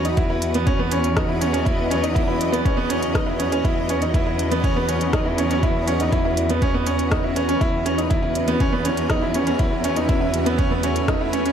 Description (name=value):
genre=piano and strings electronica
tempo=121 BPM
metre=4/4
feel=straight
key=unclear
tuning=A4 = 440 Hz
part: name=granular cloud pad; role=sustained chords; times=0.0-11.5 s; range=C#4 to E5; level=-26 LUFS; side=left 1 dB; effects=built-in reverb
part: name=clear upright piano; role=riff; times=0.0-11.5 s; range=B3 to E4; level=-22 LUFS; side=right 2 dB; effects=tape echo
part: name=warm symphonic cello section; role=bass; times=0.0-11.5 s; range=E2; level=-25 LUFS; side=left 1 dB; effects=tube saturation, sidechain pumping
part: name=organic electronic drum kit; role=drums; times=0.0-11.5 s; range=hi-hat, rim click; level=-30 LUFS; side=left 1 dB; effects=none
part: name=electronic kick drum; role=drums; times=0.2-11.2 s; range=none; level=-22 LUFS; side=equal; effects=none
part: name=swell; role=sound effects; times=10.8-11.5 s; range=none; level=-31 LUFS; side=left 3 dB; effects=none
room=light reverb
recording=none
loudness=-18 LUFS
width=side -8 dB against mid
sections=0.0-11.5 A section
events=swell 10.8-11.5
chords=0.0 C#m11/E